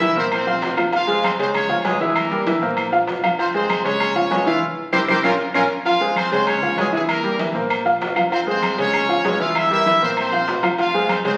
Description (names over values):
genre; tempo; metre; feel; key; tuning
latin, salsa; 195 BPM; 4/4; straight; F harmonic minor; A4 = 440 Hz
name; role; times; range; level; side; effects
brilliant horn section; melody; 0.0-11.3 s; Ab3 to F5; -24 LUFS; equal; none
clear upright piano; accompaniment; 0.0-11.4 s; E3 to F5; -22 LUFS; equal; none
fingered electric bass; bass; 0.0-11.4 s; F1 to Db2; -38 LUFS; equal; none
congas; percussion; 0.0-11.4 s; none; -36 LUFS; equal; none
maracas; percussion; 0.0-11.4 s; none; -44 LUFS; equal; none
timbales and agogo bells; percussion; 0.0-11.4 s; none; -29 LUFS; equal; none
claves; percussion; 0.3-11.2 s; none; -30 LUFS; equal; none
room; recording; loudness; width
wet large studio reverb, RT60 1.3 s; very old 78 rpm record, vinyl crackle; -19 LUFS; mono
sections
0.0-5.9 A section; 5.9-11.4 A section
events
drum fill 0.5-0.9, 5.1-5.9; band accent 4.6-5.9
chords
0.3 Bbsus2; 0.9 Fm; 1.5 Db; 2.2 C7; 2.8 Bbsus2; 3.4 Fm; 4.0 Db; 4.6 C7; 5.2 Bbm; 5.9 Fm; 6.5 Db; 7.1 C7; 7.7 Bbsus2; 8.3 Fm; 8.9 Db; 9.6 C7; 10.2 Bbsus2; 10.8 Fm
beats
0.00 0.31 0.62 | 0.93 1.24 1.54 1.85 | 2.16 2.47 2.78 3.08 | 3.39 3.70 4.01 4.32 | 4.63 4.93 5.24 5.55 | 5.86 6.17 6.47 6.78 | 7.09 7.40 7.70 8.01 | 8.32 8.63 8.94 9.24 | 9.55 9.86 10.17 10.48 | 10.78 11.09